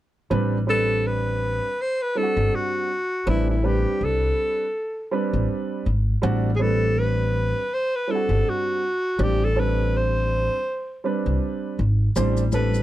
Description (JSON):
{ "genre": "hip hop, jazz-hop", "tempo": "81 BPM", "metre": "4/4", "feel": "swing 58% on 16ths", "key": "A dorian", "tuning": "A4 = 440 Hz", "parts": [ { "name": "dark grand piano", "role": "accompaniment", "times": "0.3-12.8 s", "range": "G3 to D5", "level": "-26 LUFS", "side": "right 4 dB", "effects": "none" }, { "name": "upright bass", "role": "bass", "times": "0.3-12.8 s", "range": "G1 to C2", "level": "-22 LUFS", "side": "equal", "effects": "none" }, { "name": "breathy alto saxophone", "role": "melody", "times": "0.7-12.8 s", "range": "E4 to C5", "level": "-24 LUFS", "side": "equal", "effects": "none" }, { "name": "maracas and congas", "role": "percussion", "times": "12.2-12.8 s", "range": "none", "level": "-30 LUFS", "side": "left 5 dB", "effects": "none" } ], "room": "little or no reverb", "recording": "dry, gritty hardware recording", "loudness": "-20 LUFS", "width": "side -14 dB against mid", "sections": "0.3-12.8 A section", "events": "none", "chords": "0.3 Am11" }